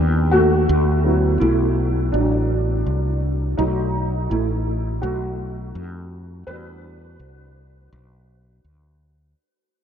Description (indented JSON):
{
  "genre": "hip hop, jazz-hop",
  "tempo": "83 BPM",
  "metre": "4/4",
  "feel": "swing 62% on 16ths",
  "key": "unclear",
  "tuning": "A4 = 445 Hz",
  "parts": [
    { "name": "dark upright piano", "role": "accompaniment", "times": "0.0-8.6 s", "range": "F#3 to B4", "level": "-21 LUFS", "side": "right 1 dB", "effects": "ensemble chorus" },
    { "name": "mellow fretless electric bass", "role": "bass", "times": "0.0-9.3 s", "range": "A1 to F2", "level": "-21 LUFS", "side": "equal", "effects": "none" }
  ],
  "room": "wet huge ambient reverb, RT60 7.7 s",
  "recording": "dreamy mix soaked in reverb, nothing above 10.7 kHz",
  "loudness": "-18 LUFS",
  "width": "side -8 dB against mid",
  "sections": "0.0-9.4 A section",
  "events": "fade-out 0.0-9.4; upright piano solo 0.0-9.4",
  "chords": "0.0 N.C.; 0.7 D69; 3.6 B7; 6.5 Em11"
}